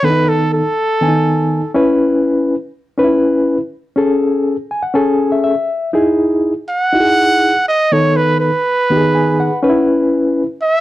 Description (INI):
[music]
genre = soul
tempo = 122 BPM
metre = 4/4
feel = straight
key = unclear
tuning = A4 = 440 Hz
[part]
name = brilliant trumpet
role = melody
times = 0.0-1.7, 6.7-10.8 s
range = A4 to F#5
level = -14 LUFS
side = right 1 dB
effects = none
[part]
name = barky reed electric piano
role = accompaniment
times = 0.0-10.5 s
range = D#3 to G#5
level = -13 LUFS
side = left 1 dB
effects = overdrive, fast tremolo
[sound]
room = wet small room reverb, RT60 0.6 s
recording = dark, warm production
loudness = -12 LUFS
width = side -15 dB against mid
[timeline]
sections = 0.0-10.8 A section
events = reed electric piano fill 4.5-5.9, 8.9-9.9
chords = 0.0 B7/D#; 1.8 C#m7; 4.0 Amaj7; 5.9 Emaj7; 7.9 B7/D#; 9.6 C#m7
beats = | 0.03 0.53 1.02 1.51 | 2.00 2.50 2.99 3.48 | 3.98 4.47 4.96 5.45 | 5.95 6.44 6.93 7.42 | 7.92 8.41 8.90 9.39 | 9.88 10.38